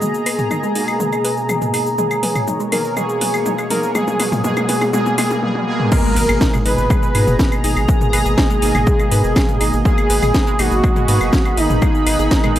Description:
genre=melodic techno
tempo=122 BPM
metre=4/4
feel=straight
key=G# minor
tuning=A4 = 440 Hz
part: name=wide unison lead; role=melody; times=0.0-12.6 s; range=D#4 to B4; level=-20 LUFS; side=equal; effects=sidechain pumping, tape echo
part: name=sweeping resonant pad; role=sustained chords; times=0.0-12.6 s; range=G#4 to B5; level=-30 LUFS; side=equal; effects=chorus, sidechain pumping
part: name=analog pluck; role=arpeggios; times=0.0-12.6 s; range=G#3 to B5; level=-27 LUFS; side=left 1 dB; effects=chorus, sidechain pumping, tape echo
part: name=analog synth brass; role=stabs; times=0.0-12.6 s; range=A#2 to G#4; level=-22 LUFS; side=right 1 dB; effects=chorus, sidechain pumping, tape echo
part: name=house drum kit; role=drums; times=0.0-12.6 s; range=claves, crash cymbal, hi-hat, shaker, snare drum, toms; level=-21 LUFS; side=equal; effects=overdrive, sidechain pumping on perc, sidechain pumping on toms, sidechain pumping on hats, sidechain pumping on cymbals
part: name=riser and impact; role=sound effects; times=1.3-7.9 s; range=none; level=-29 LUFS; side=equal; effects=none
part: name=deep dark ambient pad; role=texture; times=0.0-12.6 s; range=G#4 to D#6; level=-29 LUFS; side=right 3 dB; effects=chorus, built-in reverb, sidechain pumping
part: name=round analog bass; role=bass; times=0.3-12.6 s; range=F#1 to G#2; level=-19 LUFS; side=equal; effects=sidechain pumping, high-pass filter
part: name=electronic kick drum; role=drums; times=5.9-12.4 s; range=none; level=-17 LUFS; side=equal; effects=overdrive
room=little or no reverb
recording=dry, gritty hardware recording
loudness=-14 LUFS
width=side -12 dB against mid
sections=0.0-5.9 A section; 5.9-12.6 B section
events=build-up 0.0-5.9; drum fill 0.0-5.4, 5.4-5.9; filter sweep on synth pluck 0.0-5.9; filter sweep on analog synth lead 0.0-5.9; filter sweep on analog polysynth 0.0-5.9; drop 5.9-12.6; impact 5.9-7.9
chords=0.0 G#madd9

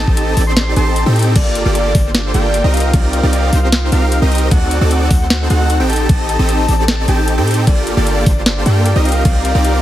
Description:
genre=future bass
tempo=152 BPM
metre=4/4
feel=half-time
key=G minor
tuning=A4 = 440 Hz
part: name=soft octave-layered synth lead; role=melody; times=0.0-9.8 s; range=D5 to C6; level=-22 LUFS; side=left 1 dB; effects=chorus, phaser, cassette tape, sidechain pumping, dub echo
part: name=supersaw chords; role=riff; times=0.0-9.8 s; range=Bb3 to A5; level=-17 LUFS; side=right 1 dB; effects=sidechain pumping
part: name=warm 808-style bass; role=bass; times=0.0-9.8 s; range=G1 to A2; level=-15 LUFS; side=equal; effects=sidechain pumping
part: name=electronic kick drum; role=drums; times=0.1-9.3 s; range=none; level=-13 LUFS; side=equal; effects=overdrive
part: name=trap drum kit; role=drums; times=0.2-9.7 s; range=crash cymbal, hi-hat, snare drum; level=-20 LUFS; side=equal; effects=overdrive
room=little or no reverb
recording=heavily compressed radio sound, multiband compression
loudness=-11 LUFS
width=side -13 dB against mid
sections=0.0-9.8 A section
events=none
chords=0.0 Am7b5; 1.4 Gm9; 2.7 Cm9; 4.5 D7b9; 5.9 Am7b5; 7.7 Gm9; 9.1 Cm9

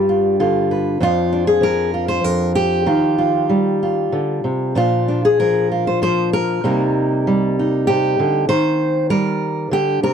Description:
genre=folk, solo fingerstyle acoustic guitar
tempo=97 BPM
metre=3/4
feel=rubato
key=unclear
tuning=A4 = 440 Hz
part: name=fingerpicked steel-string acoustic guitar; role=solo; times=0.0-10.1 s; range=F2 to C5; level=-15 LUFS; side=equal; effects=none
room=light reverb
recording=dry, close 1970s-style studio recording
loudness=-15 LUFS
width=side -7 dB against mid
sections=0.0-10.1 A section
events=none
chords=0.0 G7; 1.0 Fm69; 2.9 Ebadd9; 4.8 Bb; 6.6 Cm7

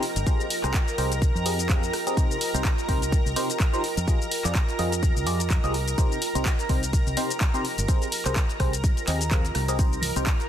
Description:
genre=piano house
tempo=126 BPM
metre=4/4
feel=swing 56% on 16ths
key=C minor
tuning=A4 = 441 Hz
part: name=analog string pad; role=sustained chords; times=0.0-10.5 s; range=Bb4 to Bb5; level=-32 LUFS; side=right 1 dB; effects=ensemble chorus, sidechain pumping
part: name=barking FM electric piano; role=riff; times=0.0-10.3 s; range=C3 to F5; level=-31 LUFS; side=left 1 dB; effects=phaser, sidechain pumping, digital delay
part: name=punchy analog drum machine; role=drums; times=0.0-10.5 s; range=handclaps, hi-hat, rim click, shaker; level=-30 LUFS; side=left 1 dB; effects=none
part: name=deep dark ambient pad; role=texture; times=0.0-10.5 s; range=F4 to G5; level=-34 LUFS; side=right 2 dB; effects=chorus, built-in reverb, sidechain pumping
part: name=fingered electric bass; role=bass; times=0.2-10.2 s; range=G1 to F2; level=-28 LUFS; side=equal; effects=sidechain pumping
part: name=electronic kick drum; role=drums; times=0.3-10.4 s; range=none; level=-23 LUFS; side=equal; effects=none
part: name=tambourine and congas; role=percussion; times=9.8-10.4 s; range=none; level=-35 LUFS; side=right 2 dB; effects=none
room=light reverb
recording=dense, heavily limited modern master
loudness=-22 LUFS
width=side -10 dB against mid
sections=0.0-10.5 A section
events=none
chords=0.3 Abmaj9/C; 2.2 Cm7; 3.8 Fm9; 6.0 Cm7; 7.9 Abmaj9/C; 9.8 Cm7

